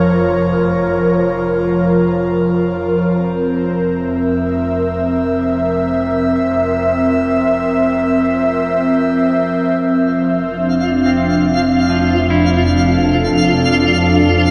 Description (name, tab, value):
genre	ambient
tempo	72 BPM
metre	4/4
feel	straight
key	F major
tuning	A4 = 440 Hz
part	airy breathy pad	sustained chords	0.0-14.5 s	F3 to E5	-16 LUFS	equal	chorus
part	rich symphonic double bass section	bass	0.0-14.5 s	F1	-26 LUFS	equal	tube saturation
part	bowed-like drone	drone	0.0-9.9 s	F3	-25 LUFS	equal	built-in reverb
part	twinkling granular texture	texture	10.7-14.5 s	F4	-20 LUFS	equal	built-in reverb
part	clean electric guitar	arpeggios	11.1-14.5 s	F3 to E4	-28 LUFS	equal	diffuse ambient delay
room	wet concert hall reverb, RT60 2.1 s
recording	none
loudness	-15 LUFS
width	mono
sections	0.0-9.8 A section; 9.8-14.5 A section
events	fade-out on double bass section 0.0-9.8; fade-in on clean electric guitar 9.8-14.5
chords	0.0 Bbm/F; 3.1 C7/F; 9.8 F6